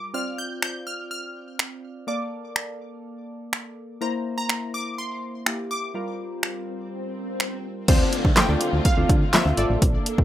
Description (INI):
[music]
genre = dance-pop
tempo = 124 BPM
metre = 4/4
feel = straight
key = D minor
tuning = A4 = 440 Hz
[part]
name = analog pluck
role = melody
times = 0.0-10.0 s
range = C5 to G6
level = -31 LUFS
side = equal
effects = chorus, ping-pong delay
[part]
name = glassy digital keys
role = accompaniment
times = 0.0-9.8 s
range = G3 to F5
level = -30 LUFS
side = left 2 dB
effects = chorus, sidechain pumping
[part]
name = deep house drum kit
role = drums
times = 0.6-10.2 s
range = crash cymbal, finger snaps, handclaps, hi-hat, kick drum, snare drum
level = -20 LUFS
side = equal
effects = overdrive
[part]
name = swell and downlifter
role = sound effects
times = 5.4-10.2 s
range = none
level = -35 LUFS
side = equal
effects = none
[part]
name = warm studio string section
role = sustained chords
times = 7.9-10.2 s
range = D3 to A4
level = -29 LUFS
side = right 1 dB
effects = sidechain pumping
[part]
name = solid FM bass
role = bass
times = 7.9-10.2 s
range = G#1 to D3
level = -24 LUFS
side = equal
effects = sidechain pumping
[sound]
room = moderate studio reverb, RT60 0.5 s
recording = rough home demo mix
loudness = -22 LUFS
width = side -13 dB against mid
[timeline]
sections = 0.0-7.9 A section; 7.9-10.2 B section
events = swell 5.4-7.9; kick muted 6.9-7.9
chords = 0.1 Dm7; 2.1 Bbmaj7; 4.0 C7; 5.9 Gm7; 7.9 Dm7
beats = | 0.14 0.62 1.11 1.59 | 2.08 2.56 3.04 3.53 | 4.01 4.50 4.98 5.46 | 5.95 6.43 6.92 7.40 | 7.88 8.37 8.85 9.34 | 9.82